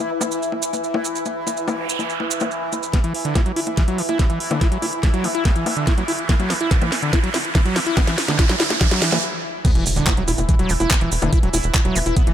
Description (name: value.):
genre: psychedelic trance.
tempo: 143 BPM.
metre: 4/4.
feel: straight.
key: unclear.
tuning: A4 = 443 Hz.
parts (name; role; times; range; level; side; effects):
bubbling stepped-filter texture; sustained chords; 0.0-12.3 s; E3 to E4; -27 LUFS; equal; chorus, built-in reverb, sidechain pumping.
garage drum kit; drums; 0.0-12.3 s; bongos, crash cymbal, handclaps, hi-hat, snare drum; -24 LUFS; left 1 dB; low-pass filter on hats, small room ambience, low-pass filter on perc, low-pass filter on cymbals, low-pass filter on snare.
maracas; percussion; 0.2-2.9, 9.7-12.2 s; none; -27 LUFS; right 7 dB; none.
noise sweep, riser and impact; sound effects; 1.4-11.3 s; none; -27 LUFS; right 2 dB; none.
screaming distorted acid line; riff; 2.9-12.3 s; D3 to E4; -23 LUFS; moving between left 4 dB and right 3 dB; distortion, chorus, auto-pan, sidechain pumping, ping-pong delay.
electronic kick drum; drums; 2.9-12.2 s; none; -17 LUFS; equal; small room ambience.
tight sequencer bass; bass; 9.8-12.3 s; E1 to F#1; -22 LUFS; equal; none.
room: light reverb.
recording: faint mains hum.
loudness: -17 LUFS.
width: side -10 dB against mid.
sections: 0.0-2.9 A section; 2.9-9.6 B section; 9.6-12.3 C section.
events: noise sweep 1.4-2.9; build-up 2.9-9.6; drum fill 2.9-9.2; riser 2.9-9.2; stop 9.2-9.6; drop 9.6-12.3; impact 9.6-11.3.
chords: 0.0 N.C.; 2.9 E5.